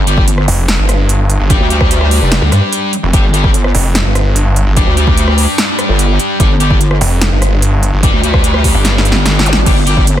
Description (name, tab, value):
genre	heavy wobble dubstep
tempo	147 BPM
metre	4/4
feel	half-time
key	unclear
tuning	A4 = 440 Hz
part	wobble bass	bass	0.0-10.2 s	F1 to D2	-12 LUFS	equal	chorus, overdrive
part	thick fuzz guitar	stabs	0.1-10.0 s	G3 to G4	-16 LUFS	left 2 dB	distortion, ping-pong delay
part	big-room dance drum kit	drums	0.1-10.2 s	crash cymbal, hi-hat, rim click, snare drum	-16 LUFS	right 1 dB	overdrive
part	electronic kick drum	drums	0.2-10.1 s	none	-12 LUFS	equal	none
part	snarling distorted saw bass	bass	0.5-9.1 s	F1 to G2	-11 LUFS	equal	distortion, overdrive
part	zap	sound effects	9.5-9.6 s	none	-21 LUFS	equal	none
room	little or no reverb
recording	dense, heavily limited modern master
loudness	-9 LUFS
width	side -11 dB against mid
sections	0.0-10.2 A section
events	drum fill 8.8-9.7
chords	0.0 G5